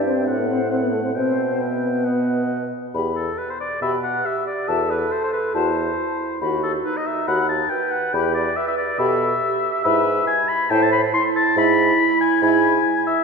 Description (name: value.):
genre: quick classical-period movement for wind quintet.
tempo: 139 BPM.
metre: 4/4.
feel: straight.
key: E minor.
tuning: A4 = 439 Hz.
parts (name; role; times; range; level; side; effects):
hollow concert flute; melody; 0.0-12.6 s; A4 to B5; -27 LUFS; left 6 dB; none.
warm oboe; second line; 0.0-13.2 s; A4 to C6; -22 LUFS; left 4 dB; none.
clear clarinet; accompaniment; 0.0-13.2 s; D#4 to F#5; -25 LUFS; right 7 dB; none.
mellow bassoon; bass; 0.0-12.8 s; D#2 to B2; -26 LUFS; right 2 dB; none.
warm French horn; accompaniment; 0.1-12.6 s; A3 to G4; -26 LUFS; right 1 dB; none.
room: wet church reverb, RT60 2.8 s.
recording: recorded in a church or concert hall.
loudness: -18 LUFS.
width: side -5 dB against mid.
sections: 0.0-2.9 A section; 2.9-13.2 B section.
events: none.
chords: 0.3 Am69; 1.2 Em/B; 2.1 B; 2.9 Em; 4.7 F#m7b5/E; 6.4 B/D#; 8.1 Em; 9.8 E/G#; 10.7 Am; 11.6 E/G#.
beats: 0.27 0.71 | 1.16 1.61 2.05 2.50 | 2.94 3.38 3.81 4.25 | 4.68 5.12 5.55 5.98 | 6.42 6.85 7.28 7.71 | 8.14 8.56 8.99 9.42 | 9.85 10.28 10.71 11.13 | 11.56 11.99 12.42 12.86.